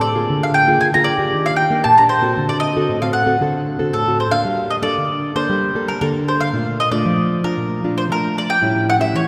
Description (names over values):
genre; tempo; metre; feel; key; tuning
samba; 115 BPM; 4/4; straight; G minor; A4 = 439 Hz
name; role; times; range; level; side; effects
mandolin; melody; 0.0-9.3 s; A4 to Bb5; -20 LUFS; equal; none
nylon-string guitar; accompaniment; 0.0-9.3 s; A2 to A4; -21 LUFS; equal; none
room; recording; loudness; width
wet church reverb, RT60 2.9 s; recorded in a church or concert hall; -17 LUFS; mono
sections
0.0-4.5 A section; 4.5-9.3 B section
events
none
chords
0.3 Bb7/D; 1.3 Ebmaj7; 2.4 D7; 4.5 Gmadd9; 6.5 Bbmaj7; 8.6 A7